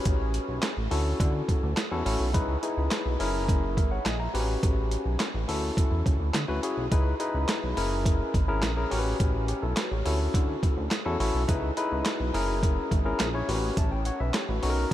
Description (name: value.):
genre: early-eighties boogie funk.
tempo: 105 BPM.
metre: 4/4.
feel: straight.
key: unclear.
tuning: A4 = 440 Hz.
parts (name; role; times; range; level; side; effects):
barky tine electric piano; accompaniment; 0.0-14.9 s; B3 to A#5; -29 LUFS; left 2 dB; overdrive, tube saturation.
chorused synth bass; bass; 0.1-14.9 s; F#1 to D3; -29 LUFS; equal; none.
boom bap sampler-style drum kit; drums; 0.1-14.9 s; handclaps, hi-hat, kick drum, snare drum; -28 LUFS; equal; none.
room: moderate huge ambient reverb, RT60 8.7 s.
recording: dreamy mix soaked in reverb.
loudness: -24 LUFS.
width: side -13 dB against mid.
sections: 0.0-14.9 A section.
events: none.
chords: 0.0 A13; 0.9 Dmaj9; 2.3 C#m9; 3.2 F#9; 4.3 A13; 5.5 Dmaj9; 6.9 C#m9; 7.8 F#9; 8.9 A13; 10.1 Dmaj9; 11.5 C#m9; 12.3 F#9; 13.5 A13.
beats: | 0.06 0.63 1.20 1.77 | 2.34 2.91 3.49 4.06 | 4.63 5.20 5.77 6.34 | 6.91 7.49 8.06 8.63 | 9.20 9.77 10.34 10.91 | 11.49 12.06 12.63 13.20 | 13.77 14.34 14.91.